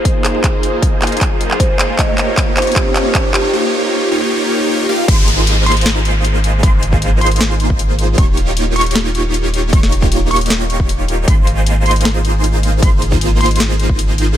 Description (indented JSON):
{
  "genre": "future bass",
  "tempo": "155 BPM",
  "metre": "4/4",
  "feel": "half-time",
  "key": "Ab major",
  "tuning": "A4 = 439 Hz",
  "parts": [
    { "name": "supersaw chords", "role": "riff", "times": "0.0-14.4 s", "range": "Bb3 to F5", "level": "-18 LUFS", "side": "right 1 dB", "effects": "phaser, cassette tape, sidechain pumping, low-pass filter, digital delay" },
    { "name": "saturated sub bass", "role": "bass", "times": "0.0-14.4 s", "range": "Eb1 to Ab1", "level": "-16 LUFS", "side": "equal", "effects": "sidechain pumping, high-pass filter" },
    { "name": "riser and downlifter", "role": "sound effects", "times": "0.7-8.2 s", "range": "none", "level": "-24 LUFS", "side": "right 1 dB", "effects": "none" },
    { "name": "electronic kick drum", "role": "drums", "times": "0.1-14.0 s", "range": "none", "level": "-14 LUFS", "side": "equal", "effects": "overdrive" },
    { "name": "trap drum kit", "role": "drums", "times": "0.1-14.3 s", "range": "crash cymbal, handclaps, hi-hat, snare drum", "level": "-20 LUFS", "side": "left 1 dB", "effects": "none" },
    { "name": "kalimba", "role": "melody", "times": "0.2-3.5 s", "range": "G4 to Eb5", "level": "-21 LUFS", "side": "equal", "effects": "sidechain pumping, ping-pong delay" },
    { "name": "wide unison pluck", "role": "arpeggios", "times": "5.1-14.4 s", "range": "C6 to Db6", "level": "-23 LUFS", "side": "right 1 dB", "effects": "sidechain pumping, digital delay" }
  ],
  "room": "little or no reverb",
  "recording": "none",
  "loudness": "-11 LUFS",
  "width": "side -11 dB against mid",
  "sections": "0.0-5.1 A section; 5.1-14.4 B section",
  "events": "build-up 0.0-5.1; drum fill 0.0-3.5; filter sweep on supersaw synth 0.0-5.1; riser 0.7-3.5; drop 5.1-14.4",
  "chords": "0.0 Ab69; 2.0 Eb9; 5.1 Ab69; 8.2 Eb9; 11.3 Ab69",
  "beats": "0.05 | 0.44 0.83 1.21 1.60 | 1.99 2.37 2.76 3.15 | 3.54 3.92 4.31 4.70 | 5.08 5.47 5.86 6.25 | 6.63 7.02 7.41 7.79 | 8.18 8.57 8.96 9.34 | 9.73 10.12 10.50 10.89 | 11.28 11.66 12.05 12.44 | 12.83 13.21 13.60 13.99"
}